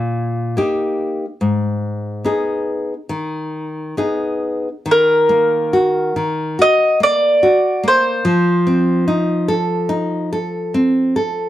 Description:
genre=fado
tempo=72 BPM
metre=4/4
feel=rubato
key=G# harmonic minor, Eb harmonic minor from 4.8 s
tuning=A4 = 441 Hz
part: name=nylon-string guitar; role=accompaniment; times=0.0-11.5 s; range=G#2 to A4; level=-17 LUFS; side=equal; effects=none
part: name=mandolin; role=melody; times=4.9-9.5 s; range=Bb4 to Eb5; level=-14 LUFS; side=equal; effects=plate reverb
room=moderate small room reverb, RT60 0.5 s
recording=none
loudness=-15 LUFS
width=side -13 dB against mid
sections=0.0-4.8 A section; 4.8-11.5 B section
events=none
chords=0.0 D#; 1.4 G#m; 4.8 Ebm; 8.3 F7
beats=0.58 | 1.42 2.26 3.10 3.98 | 4.85 5.72 6.58 7.42 | 8.25 9.08 9.90 10.73

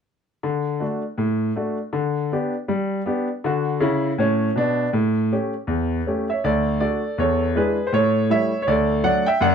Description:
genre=jazz, stride piano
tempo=161 BPM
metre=4/4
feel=swing 62% on 8ths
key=D major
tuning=A4 = 440 Hz
part: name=clear concert grand piano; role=solo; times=0.4-9.5 s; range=D2 to G5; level=-19 LUFS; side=equal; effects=none
room=moderate club reverb, RT60 0.7 s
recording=none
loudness=-19 LUFS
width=side -7 dB against mid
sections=0.4-6.4 A section; 6.4-9.5 B section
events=none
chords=0.4 D; 1.9 G/D; 3.4 D; 4.9 A7; 6.4 D; 7.2 E7; 7.9 A7; 8.7 D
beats=| 0.44 0.81 1.19 1.56 | 1.94 2.31 2.69 3.06 | 3.44 3.81 4.19 4.56 | 4.93 5.31 5.68 6.05 | 6.43 6.80 7.17 7.55 | 7.92 8.29 8.66 9.04 | 9.41

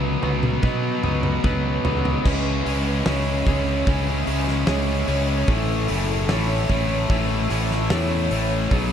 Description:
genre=post-rock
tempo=74 BPM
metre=4/4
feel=straight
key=C# minor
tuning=A4 = 440 Hz
part: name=icy glass pad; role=sustained chords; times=0.1-8.9 s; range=B4 to E6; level=-35 LUFS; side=right 1 dB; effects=chorus, built-in reverb
part: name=twangy electric guitar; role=arpeggios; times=0.0-2.3 s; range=C#3 to B4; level=-36 LUFS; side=left 4 dB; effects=tape echo
part: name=vibraphone with soft mallets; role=arpeggios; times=0.0-8.9 s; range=G#4 to E5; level=-31 LUFS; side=right 2 dB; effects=tape echo
part: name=cranked stack guitar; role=riff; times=0.0-8.9 s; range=A2 to C#4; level=-26 LUFS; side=left 11 dB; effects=overdrive, spring reverb
part: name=distorted electric guitar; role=riff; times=0.0-8.9 s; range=A2 to E4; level=-28 LUFS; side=right 10 dB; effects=distortion
part: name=fuzz fingered electric bass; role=bass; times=0.0-8.9 s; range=F#1 to B2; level=-24 LUFS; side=equal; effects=overdrive
part: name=loose indie drum kit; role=drums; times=0.2-8.9 s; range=crash cymbal, hi-hat, kick drum, snare drum, toms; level=-25 LUFS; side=equal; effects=none
room=light reverb, small room ambience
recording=dark, warm production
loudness=-19 LUFS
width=side -8 dB against mid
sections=0.0-2.3 A section; 2.3-8.9 B section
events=build-up 0.0-2.3; drum fill 0.0-2.3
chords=0.0 Badd9/C#; 2.3 C#madd9; 5.5 A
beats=0.64 1.45 | 2.26 3.07 3.88 4.68 | 5.49 6.30 7.10 7.91 | 8.72

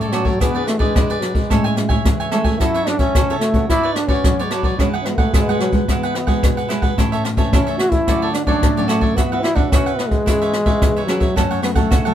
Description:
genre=samba and choro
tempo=110 BPM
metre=4/4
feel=straight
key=unclear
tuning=A4 = 441 Hz
part: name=breathy trombone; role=melody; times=0.0-12.1 s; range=F#3 to F#4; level=-20 LUFS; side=equal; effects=none
part: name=cavaquinho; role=accompaniment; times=0.0-12.1 s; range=D4 to G#5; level=-24 LUFS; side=right 5 dB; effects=none
part: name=nylon-string guitar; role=accompaniment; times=0.0-12.1 s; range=F#2 to C#5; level=-23 LUFS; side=left 2 dB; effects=none
part: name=jazz brush drum kit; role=drums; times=0.0-12.1 s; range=hi-hat, kick drum, rim click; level=-18 LUFS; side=equal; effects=none
room=moderate small room reverb, RT60 0.5 s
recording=band playing live in one room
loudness=-15 LUFS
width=side -10 dB against mid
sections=0.0-12.1 A section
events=none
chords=0.4 E7; 1.5 Amaj7; 2.6 F#m7; 3.7 Bmadd9; 4.8 Eadd9; 7.0 A; 8.1 Dmaj7; 9.2 Esus2; 10.3 C#m7/E; 11.4 F#m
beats=| 0.41 0.96 1.51 2.05 | 2.60 3.15 3.70 4.24 | 4.79 5.34 5.89 6.43 | 6.98 7.53 8.08 8.62 | 9.17 9.72 10.27 10.81 | 11.36 11.91

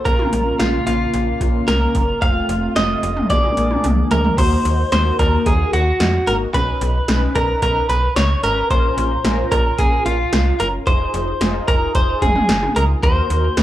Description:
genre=synth-pop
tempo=111 BPM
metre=4/4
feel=straight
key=Bb harmonic minor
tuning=A4 = 440 Hz
part: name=direct-recorded clean electric guitar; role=melody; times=0.0-13.6 s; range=F4 to F5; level=-19 LUFS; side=equal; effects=vibrato effect, tape echo
part: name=sweeping resonant pad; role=sustained chords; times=0.0-4.4, 13.0-13.6 s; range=Bb2 to Gb4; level=-26 LUFS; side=equal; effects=wide subtle chorus
part: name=mellow synth brass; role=accompaniment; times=0.1-13.6 s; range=A3 to B4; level=-25 LUFS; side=equal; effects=chorus, phaser
part: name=slap-like FM bass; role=bass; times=0.1-13.6 s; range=F1 to F2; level=-20 LUFS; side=equal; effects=none
part: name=electro analog drum machine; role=drums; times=0.1-13.6 s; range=cowbell, crash cymbal, hi-hat, kick drum, snare drum, toms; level=-20 LUFS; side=equal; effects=overdrive
room=little or no reverb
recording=dry, gritty hardware recording, transformer saturation, small room ambience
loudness=-15 LUFS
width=side -13 dB against mid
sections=0.0-4.4 A section; 4.4-13.6 B section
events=drum fill 3.3-4.4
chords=0.1 Bbm; 2.2 F; 3.3 Bb7; 4.4 Ebm; 6.5 Badd9; 8.7 Bbm; 10.9 Fm7; 13.0 Ebm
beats=| 0.06 0.60 1.14 1.68 | 2.22 2.76 3.30 3.84 | 4.38 4.92 5.46 6.00 | 6.54 7.08 7.62 8.17 | 8.71 9.25 9.79 10.33 | 10.87 11.41 11.95 12.49 | 13.03 13.57

